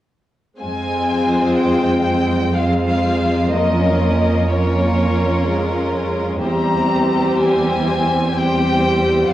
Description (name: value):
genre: classical, slow romantic movement for string orchestra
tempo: 62 BPM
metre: 3/4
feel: rubato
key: F minor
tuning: A4 = 440 Hz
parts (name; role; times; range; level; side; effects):
- rich chamber violin section; melody; 0.6-9.3 s; Db5 to Bb5; -22 LUFS; left 2 dB; none
- rich studio violin section; second line; 0.6-9.3 s; F4 to C5; -23 LUFS; equal; none
- rich chamber viola section; accompaniment; 0.6-9.3 s; G3 to Db4; -19 LUFS; equal; none
- warm chamber cello section; bass; 0.6-9.3 s; E2 to F2; -20 LUFS; right 2 dB; none
room: wet recital hall reverb, RT60 1.6 s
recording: worn, warbling old tape, cassette tape, warbly pitch drift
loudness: -15 LUFS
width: side -13 dB against mid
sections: 0.6-9.3 A section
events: none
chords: 0.6 Fm; 3.5 Bbm/F; 6.5 C7/E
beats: | 0.60 1.59 2.56 | 3.54 4.51 5.49 | 6.45 7.42 8.36 | 9.28